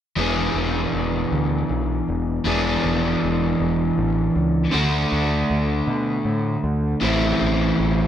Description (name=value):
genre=rock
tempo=53 BPM (dotted quarters)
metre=6/8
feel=straight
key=E mixolydian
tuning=A4 = 440 Hz
part: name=crunchy overdriven guitar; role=riff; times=0.2-8.1 s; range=A2 to G#4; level=-20 LUFS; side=equal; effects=none
part: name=growling picked electric bass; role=bass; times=0.2-8.1 s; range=E1 to B2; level=-24 LUFS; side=equal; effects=overdrive
room=moderate stone room reverb, RT60 1.1 s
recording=band playing live in one room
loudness=-19 LUFS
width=side -10 dB against mid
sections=0.2-8.1 A section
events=none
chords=0.2 E7; 4.7 D6; 7.0 Am